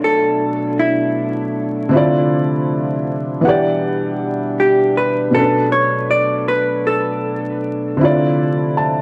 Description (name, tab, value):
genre	lo-fi hip hop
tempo	79 BPM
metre	4/4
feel	swing 64% on 16ths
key	B minor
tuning	A4 = 441 Hz
part	vintage hollow-body jazz guitar	melody	0.0-8.0 s	E4 to D5	-19 LUFS	equal	tape echo
part	felt-muted upright piano	accompaniment	0.0-9.0 s	B2 to A5	-20 LUFS	equal	cassette tape
part	warm brass ensemble	sustained chords	0.0-9.0 s	B2 to D4	-24 LUFS	equal	none
room	moderate spring reverb, RT60 1.7 s, small room ambience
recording	worn, warbling old tape, cassette tape, vinyl crackle, warbly pitch drift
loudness	-17 LUFS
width	mono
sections	0.0-9.0 A section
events	none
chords	0.0 Bm7; 1.9 Dm7; 3.4 Em7; 5.3 Bm7; 8.0 Dm7